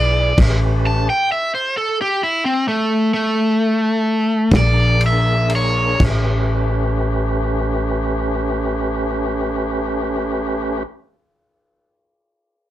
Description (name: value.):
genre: slow blues.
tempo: 40-46 BPM (dotted quarters).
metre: 12/8.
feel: straight.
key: A mixolydian.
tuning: A4 = 440 Hz.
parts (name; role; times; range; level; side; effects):
cranked stack guitar; melody; 0.0-6.0 s; A3 to A5; -17 LUFS; equal; overdrive.
tonewheel organ; sustained chords; 0.0-10.8 s; A3 to D5; -21 LUFS; right 1 dB; slow rotary speaker, overdrive.
upright bass; bass; 0.0-10.8 s; A1 to B1; -19 LUFS; equal; none.
warm soul drum kit; drums; 0.4-6.2 s; crash cymbal, kick drum, ride cymbal, snare drum; -20 LUFS; equal; none.
room: moderate small room reverb, RT60 0.5 s.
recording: none.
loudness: -16 LUFS.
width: side -13 dB against mid.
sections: 0.0-6.0 A section; 6.0-12.1 B section.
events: slowing down 0.0-6.0; overdriven electric guitar solo 0.0-6.0.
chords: 0.4 A9; 4.5 Bb7; 6.0 A9.